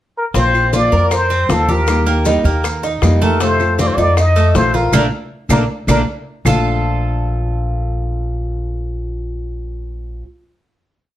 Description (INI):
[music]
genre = latin, Cuban son and guajira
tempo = 157 BPM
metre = 4/4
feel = straight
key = Bb major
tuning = A4 = 440 Hz
[part]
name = trumpet with plunger mute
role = melody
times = 0.2-6.0 s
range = A4 to Eb5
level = -17 LUFS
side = left 1 dB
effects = none
[part]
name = nylon-string guitar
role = accompaniment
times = 0.3-10.3 s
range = Bb2 to G4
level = -22 LUFS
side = left 4 dB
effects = none
[part]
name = Cuban tres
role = arpeggios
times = 0.3-10.2 s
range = A3 to Bb4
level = -21 LUFS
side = right 4 dB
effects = none
[part]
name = upright bass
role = bass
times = 0.3-10.2 s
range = Bb1 to F2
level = -17 LUFS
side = equal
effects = none
[part]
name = bongos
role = percussion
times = 0.3-6.5 s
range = none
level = -25 LUFS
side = left 5 dB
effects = none
[part]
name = maracas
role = percussion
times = 0.3-6.5 s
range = none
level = -30 LUFS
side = left 5 dB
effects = none
[part]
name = congas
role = percussion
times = 0.4-6.6 s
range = none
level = -22 LUFS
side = equal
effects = none
[part]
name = claves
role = percussion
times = 0.5-6.5 s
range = none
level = -28 LUFS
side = right 9 dB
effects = none
[sound]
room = light reverb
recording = none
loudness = -13 LUFS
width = side -13 dB against mid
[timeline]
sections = 0.0-0.3 pickup bar; 0.3-6.5 A section; 6.5-9.5 final chord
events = band accent 4.9-6.5; drum fill 5.7-6.5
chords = 0.3 Bbsus2; 1.9 Eb; 3.4 F7; 4.9 Bbmaj7